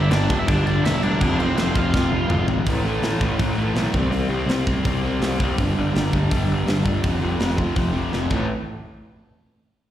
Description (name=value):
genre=punk rock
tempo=164 BPM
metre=4/4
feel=straight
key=A minor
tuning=A4 = 438 Hz
part: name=biting lead guitar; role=melody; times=0.0-2.4 s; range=C4 to F5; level=-26 LUFS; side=right 2 dB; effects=overdrive, slapback echo
part: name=crunchy overdriven guitar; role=riff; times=0.0-8.5 s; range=F2 to C4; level=-24 LUFS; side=left 5 dB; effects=slapback echo
part: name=sludgy distorted guitar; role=riff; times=0.0-8.4 s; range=F2 to C4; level=-27 LUFS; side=right 9 dB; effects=overdrive, slapback echo
part: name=fuzz picked electric bass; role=bass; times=0.0-8.5 s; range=E1 to C2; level=-23 LUFS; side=equal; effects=overdrive
part: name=tight metal drum kit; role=drums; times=0.1-8.4 s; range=crash cymbal, hi-hat, kick drum, snare drum, toms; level=-25 LUFS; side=equal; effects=none
room=little or no reverb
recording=live gig heard through the venue's PA, recital hall reverb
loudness=-19 LUFS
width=side -11 dB against mid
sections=0.0-2.7 A section; 2.7-8.5 B section; 8.5-9.9 C section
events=drum fill 1.9-2.7, 8.1-8.5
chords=0.0 G5; 1.2 F5; 2.7 A5; 3.9 C5; 5.6 G5; 7.0 F5; 8.3 A5; 8.5 N.C.